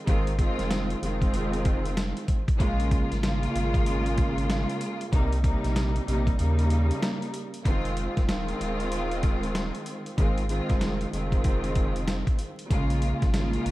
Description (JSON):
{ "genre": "hip hop, boom-bap hip-hop", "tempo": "95 BPM", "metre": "4/4", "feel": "swing 63% on 16ths", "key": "F minor", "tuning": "A4 = 439 Hz", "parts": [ { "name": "muted studio string section", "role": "accompaniment", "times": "0.1-13.7 s", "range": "C3 to F4", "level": "-28 LUFS", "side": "equal", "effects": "none" }, { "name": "warm sub bass", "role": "bass", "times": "0.1-13.7 s", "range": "Eb1 to Eb2", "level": "-28 LUFS", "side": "equal", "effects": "none" }, { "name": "dusty soul sampler-style drum kit", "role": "drums", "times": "0.1-13.7 s", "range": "hi-hat, kick drum, snare drum", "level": "-27 LUFS", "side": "equal", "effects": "none" } ], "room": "light reverb", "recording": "dark, warm production, vinyl crackle", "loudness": "-24 LUFS", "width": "side -17 dB against mid", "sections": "0.0-7.7 A section; 7.7-13.7 B section", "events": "kick muted 6.4-7.7", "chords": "0.1 Ab6; 2.6 Bbm7; 5.1 Cm7; 6.4 Eb7; 7.7 Fm7; 10.2 Ab6; 12.7 Bbm7", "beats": "| 0.07 0.71 1.34 1.97 | 2.60 3.23 3.86 4.50 | 5.13 5.76 6.39 7.02 | 7.65 8.29 8.92 9.55 | 10.18 10.81 11.44 12.07 | 12.71 13.34" }